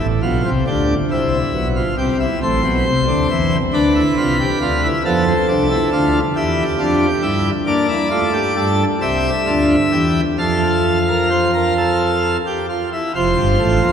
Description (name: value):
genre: classical, baroque-style 3-part fugue for pipe organ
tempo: 45 BPM (dotted quarters)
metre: 6/8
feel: uneven beats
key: F major from 7.7 s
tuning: A4 = 440 Hz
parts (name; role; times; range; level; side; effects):
- pipe organ, plenum; solo; 0.0-13.9 s; F1 to F5; -14 LUFS; equal; none
room: wet cathedral reverb, RT60 5.4 s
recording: none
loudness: -14 LUFS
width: side -8 dB against mid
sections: 0.0-13.1 A section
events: none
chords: 0.0 Em (rootless); 1.1 C; 2.4 Am; 3.7 G; 5.1 F; 6.4 Em; 7.7 Gm7; 9.0 C; 10.4 F